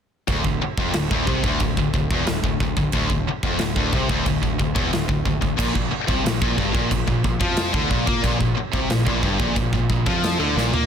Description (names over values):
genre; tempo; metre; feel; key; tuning
heavy metal; 91 BPM; 4/4; straight; D minor; A4 = 440 Hz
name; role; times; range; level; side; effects
high-gain distorted guitar; riff; 0.3-10.9 s; D2 to Bb3; -24 LUFS; left 10 dB; distortion
scooped high-gain guitar; riff; 0.3-10.9 s; D2 to Bb3; -25 LUFS; right 10 dB; distortion
growling picked electric bass; bass; 0.3-10.9 s; D1 to Bb2; -27 LUFS; equal; overdrive
big rock drum kit; drums; 0.3-10.9 s; china cymbal, crash cymbal, kick drum, snare drum, toms; -23 LUFS; right 1 dB; none
room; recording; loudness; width
little or no reverb; dense, heavily limited modern master; -19 LUFS; side -8 dB against mid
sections
0.3-10.9 A section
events
drum fill 10.6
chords
0.3 Dm; 5.6 Bb5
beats
| 0.29 0.95 1.61 2.27 | 2.94 3.60 4.26 4.92 | 5.59 6.25 6.91 7.57 | 8.24 8.90 9.56 10.23